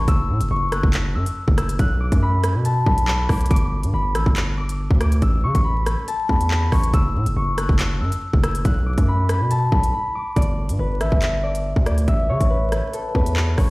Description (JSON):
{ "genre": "hip hop, drill", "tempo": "140 BPM", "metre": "4/4", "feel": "half-time", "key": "B minor", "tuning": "A4 = 439 Hz", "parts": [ { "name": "concert harp", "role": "melody", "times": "0.0-13.7 s", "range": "A4 to F#6", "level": "-25 LUFS", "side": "left 1 dB", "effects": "none" }, { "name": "distorted 808-style bass", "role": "bass", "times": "0.0-13.7 s", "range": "F#1 to C#3", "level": "-20 LUFS", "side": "equal", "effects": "distortion" }, { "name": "drill drum kit", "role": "drums", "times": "0.1-13.7 s", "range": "handclaps, hi-hat, kick drum, rim click", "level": "-21 LUFS", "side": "equal", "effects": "none" } ], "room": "little or no reverb", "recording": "played on a big sound system in a bare room, stone room reverb, vinyl crackle", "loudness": "-17 LUFS", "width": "side -22 dB against mid", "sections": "0.0-10.4 A section; 10.4-13.7 B section", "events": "break 9.9-10.4", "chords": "0.1 F#m7; 1.8 B5; 3.5 G5; 5.2 A; 6.9 F#m7; 8.7 B5; 10.4 G5; 12.1 A", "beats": "| 0.08 0.51 0.94 1.36 | 1.79 2.22 2.65 3.08 | 3.51 3.94 4.36 4.79 | 5.22 5.65 6.08 6.51 | 6.93 7.36 7.79 8.22 | 8.65 9.08 9.51 9.94 | 10.36 10.79 11.22 11.65 | 12.08 12.51 12.94 13.36" }